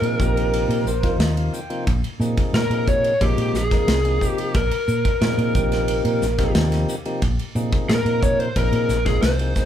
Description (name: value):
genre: electric jazz fusion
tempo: 90 BPM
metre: 4/4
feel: straight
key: unclear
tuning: A4 = 440 Hz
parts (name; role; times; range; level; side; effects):
- lead guitar through a small cranked amp; melody; 0.0-9.7 s; G4 to Db5; -22 LUFS; left 1 dB; overdrive
- tonewheel organ; accompaniment; 0.0-9.7 s; C3 to G5; -27 LUFS; left 1 dB; overdrive, stopped rotary speaker
- hollow-body short-scale fingered electric bass; bass; 0.0-9.5 s; Bb1 to Bb2; -22 LUFS; equal; none
- modern studio drum kit; drums; 0.0-9.7 s; hi-hat, kick drum, ride cymbal, snare drum; -23 LUFS; equal; none
room: light reverb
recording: band playing live in one room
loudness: -18 LUFS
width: side -10 dB against mid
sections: 0.0-9.7 A section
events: tonewheel organ fill 0.5-1.9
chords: 0.2 Cm7/Bb; 1.9 Bb5; 3.2 Ab69/Bb; 4.5 Bb5; 5.6 Cm7/Bb; 7.2 Ab69/Bb